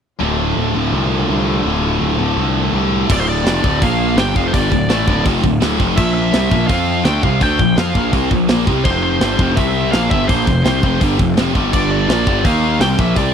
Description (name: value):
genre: heavy metal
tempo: 167 BPM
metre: 4/4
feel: straight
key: D minor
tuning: A4 = 441 Hz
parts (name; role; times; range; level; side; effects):
- dark studio string section; sustained chords; 0.2-3.1 s; D3 to F4; -28 LUFS; equal; none
- high-gain distorted guitar; riff; 0.2-13.3 s; D2 to F4; -20 LUFS; left 15 dB; distortion
- scooped high-gain guitar; riff; 0.2-13.3 s; D2 to F4; -20 LUFS; right 14 dB; distortion
- fuzz picked electric bass; bass; 0.2-13.3 s; D1 to F2; -19 LUFS; equal; overdrive
- high-gain lead guitar; melody; 3.1-13.3 s; C5 to G5; -21 LUFS; left 1 dB; distortion, tape echo
- tight metal drum kit; drums; 3.1-13.2 s; crash cymbal, hi-hat, kick drum, snare drum; -19 LUFS; equal; none
room: small room ambience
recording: dry, close 1970s-style studio recording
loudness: -13 LUFS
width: side -7 dB against mid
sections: 0.2-3.1 A section; 3.1-13.3 B section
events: none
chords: 0.2 Dm; 3.8 Bb5; 4.2 Dm; 6.0 Bb5; 6.7 F5; 7.1 Bb5; 8.8 F5; 9.6 C5; 9.9 F5; 11.7 G5; 12.4 Eb5; 12.8 G5